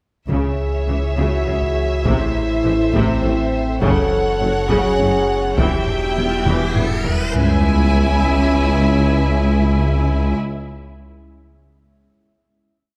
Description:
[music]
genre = cinematic, hybrid orchestral and electronic film score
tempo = 68 BPM (dotted quarters)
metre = 6/8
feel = straight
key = C# harmonic minor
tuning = A4 = 440 Hz
[part]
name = warm symphonic violin section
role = melody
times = 0.3-10.3 s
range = E5 to G#5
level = -28 LUFS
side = equal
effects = none
[part]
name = rich symphonic violin section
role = second line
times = 0.3-10.3 s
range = C5 to E5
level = -32 LUFS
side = equal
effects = none
[part]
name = warm symphonic viola section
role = accompaniment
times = 0.3-10.3 s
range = C3 to E4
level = -28 LUFS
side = equal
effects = none
[part]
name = dark French horn section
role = sustained chords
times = 0.3-10.3 s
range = C4 to A4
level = -26 LUFS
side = equal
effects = none
[part]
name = glassy FM pad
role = sustained chords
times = 0.3-10.3 s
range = E3 to E5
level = -30 LUFS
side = equal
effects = ensemble chorus, built-in reverb
[part]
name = harp-like synth pluck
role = arpeggios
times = 0.3-6.9 s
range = C#3 to E4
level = -31 LUFS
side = equal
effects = none
[part]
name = mellow tuba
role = bass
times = 0.3-10.3 s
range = E1 to C#2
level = -27 LUFS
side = equal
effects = none
[part]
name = rich symphonic cello section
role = bass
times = 0.3-10.3 s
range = C#2 to C#3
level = -26 LUFS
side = equal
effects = none
[part]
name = rich symphonic double bass section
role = bass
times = 0.3-10.3 s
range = E1 to C#2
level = -29 LUFS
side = equal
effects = none
[part]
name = sub bass with octave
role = bass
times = 0.3-10.3 s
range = E1 to C#2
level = -24 LUFS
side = equal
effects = none
[part]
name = taiko ensemble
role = drums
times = 0.3-7.3 s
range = none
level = -26 LUFS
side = equal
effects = none
[part]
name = riser and sub drop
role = sound effects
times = 5.5-9.1 s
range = none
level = -29 LUFS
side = equal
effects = none
[sound]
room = moderate scoring stage reverb, RT60 1.9 s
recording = none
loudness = -18 LUFS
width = mono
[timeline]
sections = 0.3-7.3 theme; 7.3-10.9 final chord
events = riser 5.5-7.3; drum fill 6.5-7.3; impact 7.3-9.1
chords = 0.3 C#m; 2.1 Am; 3.8 F#m; 5.6 Em; 7.3 C#m

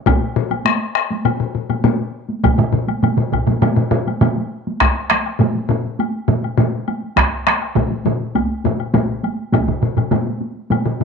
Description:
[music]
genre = japanese traditional, taiko drum ensemble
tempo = 102 BPM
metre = 4/4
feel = straight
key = none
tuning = none
[part]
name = solo taiko drums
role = percussion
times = 0.1-11.0 s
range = none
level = -19 LUFS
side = left 7 dB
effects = none
[part]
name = taiko ensemble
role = percussion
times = 0.1-11.0 s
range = none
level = -22 LUFS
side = right 2 dB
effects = none
[part]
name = taiko ensemble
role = percussion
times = 0.1-9.7 s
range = none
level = -21 LUFS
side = right 1 dB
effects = none
[part]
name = woodblock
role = percussion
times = 0.1-10.9 s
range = none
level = -26 LUFS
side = left 8 dB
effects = none
[part]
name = taiko ensemble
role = percussion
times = 2.4-11.0 s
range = none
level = -20 LUFS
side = right 8 dB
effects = none
[sound]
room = moderate spring reverb, RT60 1.1 s, small room ambience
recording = 1960s-style stereo with parts hard left and right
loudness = -16 LUFS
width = side -6 dB against mid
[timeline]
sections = 0.0-4.8 A section; 4.8-11.0 B section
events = none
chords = none

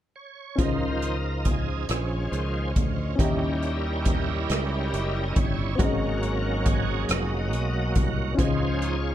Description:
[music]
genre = slow gospel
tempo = 46 BPM (dotted quarters)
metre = 6/8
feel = straight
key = Db major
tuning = A4 = 439 Hz
[part]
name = bright tonewheel organ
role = sustained chords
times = 0.2-9.1 s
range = Eb3 to Eb5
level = -30 LUFS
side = right 3 dB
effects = slow rotary speaker, overdrive, chorus vibrato
[part]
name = warm upright piano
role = accompaniment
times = 0.6-9.1 s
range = Ab2 to Eb5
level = -31 LUFS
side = left 3 dB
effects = none
[part]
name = clear studio string section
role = sustained chords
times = 0.6-9.1 s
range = F3 to Eb5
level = -37 LUFS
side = equal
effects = none
[part]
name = fingered electric bass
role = bass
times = 0.6-9.1 s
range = F1 to Eb2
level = -28 LUFS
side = equal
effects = none
[part]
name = swinging big-band drum kit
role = drums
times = 0.6-9.0 s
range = hi-hat, kick drum, rim click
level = -26 LUFS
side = equal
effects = none
[sound]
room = light reverb, studio ambience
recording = dark, warm production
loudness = -23 LUFS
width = side -12 dB against mid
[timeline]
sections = 0.6-9.1 A section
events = tonewheel organ solo 0.6-9.1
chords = 0.0 N.C.; 0.6 Dbmaj9; 3.2 Eb7b9; 5.8 Ab7sus4; 8.4 Dbmaj9

